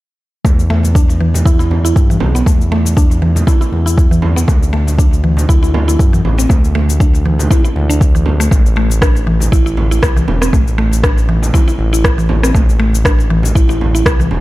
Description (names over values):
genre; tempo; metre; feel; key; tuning
afro house; 119 BPM; 4/4; swing 55% on 16ths; A minor; A4 = 441 Hz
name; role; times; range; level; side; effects
mallet-like synth pluck; arpeggios; 0.4-14.3 s; E3 to E4; -18 LUFS; equal; chorus, sidechain pumping, dub echo
smooth synth bass; bass; 0.4-14.4 s; E1 to G2; -14 LUFS; equal; sidechain pumping
electronic kick drum; drums; 0.4-14.2 s; none; -11 LUFS; equal; overdrive
congas; percussion; 0.4-14.4 s; none; -22 LUFS; right 3 dB; none
electronic cabasa and rim click; drums; 0.5-14.3 s; none; -21 LUFS; left 1 dB; overdrive
room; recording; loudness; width
light reverb; dark, warm production; -10 LUFS; side -18 dB against mid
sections
0.4-14.4 A section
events
none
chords
0.4 N.C.; 4.5 D5; 8.5 A5